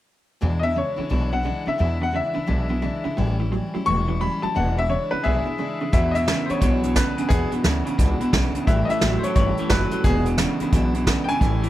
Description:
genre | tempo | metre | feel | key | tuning
rockabilly | 175 BPM | 4/4 | swing 63% on 8ths | E mixolydian | A4 = 441 Hz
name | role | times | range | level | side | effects
picked steel-string acoustic guitar | accompaniment | 0.4-11.7 s | E2 to E4 | -29 LUFS | left 3 dB | plate reverb
electric guitar through a small old amp | riff | 0.4-11.7 s | E2 to F#3 | -26 LUFS | right 2 dB | spring reverb
upright bass | bass | 0.4-11.7 s | E1 to E2 | -24 LUFS | equal | none
bright upright piano | melody | 0.6-11.7 s | B3 to C#6 | -25 LUFS | left 2 dB | slapback echo, plate reverb
vintage brush drum kit | drums | 5.9-11.7 s | hi-hat, kick drum, snare drum | -22 LUFS | equal | none
room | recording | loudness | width
little or no reverb | none | -19 LUFS | side -14 dB against mid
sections
0.4-5.9 A section; 5.9-11.7 B section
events
break 5.6-5.9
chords
0.4 E7; 3.2 A7; 4.6 E7; 8.7 A7; 10.0 E7

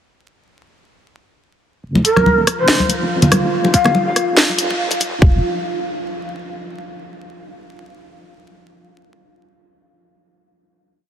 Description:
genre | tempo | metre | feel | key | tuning
deep dubstep | 142 BPM | 4/4 | swing 55% on 16ths, half-time | unclear | A4 = 440 Hz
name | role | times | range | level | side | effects
deep dark ambient pad | sustained chords | 2.5-5.3 s | F4 to F5 | -24 LUFS | right 2 dB | chorus, built-in reverb
deep soft wobble bass | bass | 1.8-5.4 s | Eb1 to F1 | -22 LUFS | equal | chorus, high-pass filter
breathy mellow shakuhachi | melody | 2.0-4.2 s | Bb4 to F5 | -20 LUFS | equal | low-pass filter, dub echo
garage drum kit | drums | 2.0-5.1 s | hi-hat, rim click, snare drum | -18 LUFS | equal | none
congas | percussion | 2.0-5.1 s | none | -18 LUFS | left 1 dB | none
electronic kick drum | drums | 3.7-5.3 s | none | -12 LUFS | equal | none
room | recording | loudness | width
moderate huge ambient reverb, RT60 7.0 s | dense, heavily limited modern master, vinyl crackle, high-pass filter | -13 LUFS | side -9 dB against mid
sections
1.8-5.2 build; 5.2-6.9 final note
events
build-up 1.8-5.2; filter sweep on ambient pad 1.8-5.2; filter sweep on shakuhachi 1.8-5.2; filter sweep 1.8-5.2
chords
1.8 Ebsus2; 5.2 N.C.

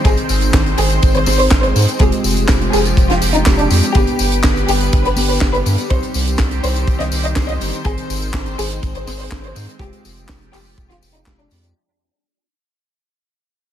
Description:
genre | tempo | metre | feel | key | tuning
italo disco | 123 BPM | 4/4 | straight | unclear | A4 = 440 Hz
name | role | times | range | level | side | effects
lush unison pad | sustained chords | 0.0-11.7 s | D3 to C5 | -23 LUFS | equal | chorus, phaser
semi-hollow electric guitar | stabs | 0.0-11.7 s | Ab3 to C5 | -24 LUFS | right 1 dB | none
round analog bass | bass | 0.0-11.7 s | F1 to Ab2 | -19 LUFS | equal | none
kick drum | drums | 0.0-11.4 s | none | -16 LUFS | equal | none
tight funk drum kit | drums | 0.0-11.7 s | handclaps, hi-hat, snare drum, tambourine | -21 LUFS | right 1 dB | gated reverb
dark studio violin section | melody | 0.1-11.7 s | D4 to Eb5 | -21 LUFS | left 1 dB | ping-pong delay
room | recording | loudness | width
small room reverb | none | -13 LUFS | side -10 dB against mid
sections
0.0-11.8 A section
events
fade-out 4.0-11.8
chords
0.1 Ab; 2.0 Fmadd9; 4.0 G; 5.9 Cm; 7.9 Ab; 9.8 Fmadd9

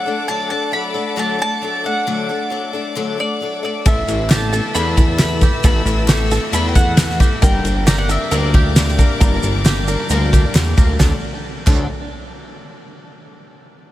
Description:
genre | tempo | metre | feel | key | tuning
indie folk with a building arrangement | 134 BPM | 4/4 | straight | D major | A4 = 437 Hz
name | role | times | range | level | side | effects
mandolin | melody | 0.0-10.5 s | D5 to C#6 | -23 LUFS | right 1 dB | tape echo
picked steel-string acoustic guitar | accompaniment | 0.0-11.9 s | G2 to Bb4 | -25 LUFS | left 5 dB | none
warm chamber string section | sustained chords | 0.0-11.2 s | A3 to E6 | -28 LUFS | left 2 dB | none
warm upright piano | accompaniment | 3.8-11.9 s | G1 to E5 | -29 LUFS | left 4 dB | none
bluegrass banjo | arpeggios | 3.9-11.9 s | D4 to Bb4 | -26 LUFS | right 4 dB | tape echo
chorused synth bass | bass | 3.9-11.9 s | G1 to E2 | -19 LUFS | equal | none
loose indie drum kit | drums | 3.9-11.8 s | crash cymbal, kick drum, ride cymbal, snare drum | -15 LUFS | equal | none
tube shaker | percussion | 3.9-11.9 s | none | -32 LUFS | right 6 dB | none
group handclap | percussion | 4.3-11.9 s | none | -33 LUFS | left 4 dB | none
room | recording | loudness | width
light reverb, small room ambience | none | -14 LUFS | side -14 dB against mid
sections
0.0-11.0 A section; 11.0-12.8 B section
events
none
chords
0.0 D; 3.9 Asus2; 7.4 Gm; 11.0 D

